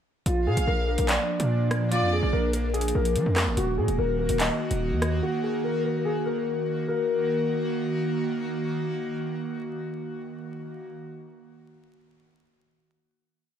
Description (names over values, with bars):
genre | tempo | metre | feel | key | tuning
hip hop, drill | 145 BPM | 4/4 | half-time | Eb harmonic minor | A4 = 443 Hz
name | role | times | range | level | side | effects
dark concert grand piano | melody | 0.3-8.1 s | F4 to Eb5 | -28 LUFS | left 3 dB | lush chorus
airy breathy pad | sustained chords | 0.3-11.0 s | Eb3 to Gb4 | -29 LUFS | right 2 dB | chorus
distorted 808-style bass | bass | 0.3-5.2 s | Eb1 to F3 | -26 LUFS | equal | distortion
drill drum kit | drums | 0.3-5.1 s | handclaps, hi-hat, rim click | -29 LUFS | equal | none
warm symphonic violin section | second line | 0.5-2.3 s | D5 to F5 | -32 LUFS | equal | diffuse ambient delay
room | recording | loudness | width
moderate plate reverb, RT60 1.0 s, small room ambience | dreamy mix soaked in reverb, vinyl crackle | -24 LUFS | side -9 dB against mid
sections
0.3-6.9 hook; 6.9-10.2 final chord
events
none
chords
0.3 Bb; 3.6 Ebm